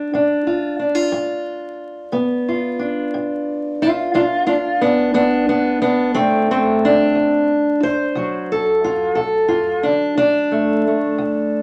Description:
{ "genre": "acoustic country blues, solo or duo", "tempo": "60 BPM (dotted quarters)", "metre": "12/8", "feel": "straight", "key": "unclear", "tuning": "A4 = 440 Hz", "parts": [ { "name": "fingerpicked steel-string acoustic guitar", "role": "solo", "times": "0.0-11.6 s", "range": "D2 to C5", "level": "-18 LUFS", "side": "equal", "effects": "none" } ], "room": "wet studio reverb, RT60 0.6 s", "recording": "vinyl crackle", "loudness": "-18 LUFS", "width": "mono", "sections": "0.0-11.6 A section", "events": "none", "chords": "0.0 G7; 6.2 D7" }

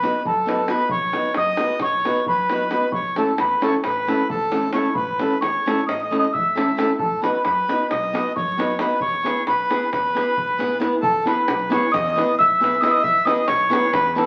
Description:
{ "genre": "balkan folk, Balkan wedding band", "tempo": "267 BPM (eighths)", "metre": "9/8", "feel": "straight", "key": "E major", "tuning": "A4 = 439 Hz", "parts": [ { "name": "large celesta", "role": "melody", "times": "0.0-14.3 s", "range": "A5 to E6", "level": "-24 LUFS", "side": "equal", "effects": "none" }, { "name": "accordion", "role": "second line", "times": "0.0-14.3 s", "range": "A4 to E5", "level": "-27 LUFS", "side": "equal", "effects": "none" }, { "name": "flamenco guitar", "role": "accompaniment", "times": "0.0-14.3 s", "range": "A3 to B4", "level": "-26 LUFS", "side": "equal", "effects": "none" }, { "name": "upright bass", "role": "bass", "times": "0.0-14.2 s", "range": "A1 to F#2", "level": "-40 LUFS", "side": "equal", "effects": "none" }, { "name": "davul", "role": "percussion", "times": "0.0-14.3 s", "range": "none", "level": "-31 LUFS", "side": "equal", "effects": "none" } ], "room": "wet large studio reverb, RT60 0.9 s", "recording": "very old 78 rpm record, vinyl crackle", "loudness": "-20 LUFS", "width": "mono", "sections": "0.0-11.0 A section; 11.0-14.3 B section", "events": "none", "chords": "0.0 B; 2.9 A; 7.0 B; 9.0 E" }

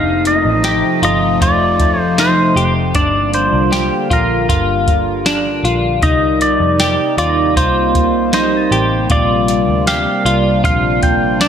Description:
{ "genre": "dream pop", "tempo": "78 BPM", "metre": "4/4", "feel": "straight", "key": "C dorian", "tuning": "A4 = 440 Hz", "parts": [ { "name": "pedal steel guitar", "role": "melody", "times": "0.0-11.5 s", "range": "Bb4 to G5", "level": "-17 LUFS", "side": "right 1 dB", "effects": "digital delay" }, { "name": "phased analog pad", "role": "sustained chords", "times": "0.0-11.5 s", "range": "C3 to F4", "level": "-18 LUFS", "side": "equal", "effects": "phaser, chorus" }, { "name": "semi-hollow electric guitar", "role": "arpeggios", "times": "0.0-11.5 s", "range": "D4 to G4", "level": "-18 LUFS", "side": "left 3 dB", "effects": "analog chorus, digital delay" }, { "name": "vintage muted picked electric bass", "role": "bass", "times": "0.0-11.5 s", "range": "F1 to F2", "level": "-20 LUFS", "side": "equal", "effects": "none" }, { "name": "glockenspiel with rubber mallets", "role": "texture", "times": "0.0-9.5 s", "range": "A6 to C7", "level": "-34 LUFS", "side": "right 2 dB", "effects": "none" }, { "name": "soft vintage rhythm box", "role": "drums", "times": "0.3-11.5 s", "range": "hi-hat, kick drum, snare drum", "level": "-18 LUFS", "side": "equal", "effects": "none" } ], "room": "moderate lush hall reverb, RT60 1.9 s", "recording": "none", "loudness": "-11 LUFS", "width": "side -8 dB against mid", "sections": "0.0-11.5 A section", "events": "none", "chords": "0.0 F7; 3.0 Gm7; 6.0 Cm7; 9.1 Bb69" }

